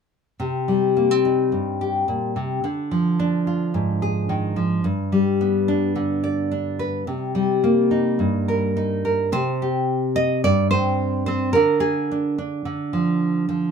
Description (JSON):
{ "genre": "folk, solo fingerstyle acoustic guitar", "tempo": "108 BPM", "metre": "4/4", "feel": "straight", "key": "C minor", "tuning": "A4 = 437 Hz", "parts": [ { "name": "nylon-string guitar", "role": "solo", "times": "0.4-13.7 s", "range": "G2 to Eb5", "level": "-19 LUFS", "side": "equal", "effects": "none" } ], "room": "moderate studio reverb, RT60 0.6 s", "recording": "minimal, uncompressed stereo recording", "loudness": "-19 LUFS", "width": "side -6 dB against mid", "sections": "0.4-9.3 A section; 9.3-13.7 B section", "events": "none", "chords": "0.4 Cm; 2.6 Ddim; 4.8 G; 7.1 Cm7; 9.3 C5; 11.6 Ddim", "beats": "| 0.39 0.96 1.52 2.08 | 2.63 3.18 3.74 4.29 | 4.84 5.39 5.95 6.51 | 7.07 7.63 8.19 8.76 | 9.33 9.89 10.45 11.00 | 11.56 12.11 12.66 13.21" }